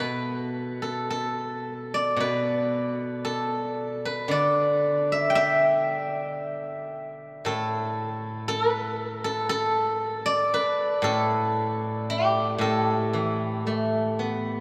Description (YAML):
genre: chinese traditional, Chinese solo plucked strings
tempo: 54-61 BPM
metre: 4/4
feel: rubato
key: A shang mode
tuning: A4 = 439 Hz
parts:
  - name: steel-string zither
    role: solo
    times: 0.0-14.6 s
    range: A2 to G5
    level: -26 LUFS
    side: equal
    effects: none
room: wet cathedral reverb, RT60 6.2 s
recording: in a vast, echoing space, faint mains hum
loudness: -26 LUFS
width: mono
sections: 0.0-14.6 A section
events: none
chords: none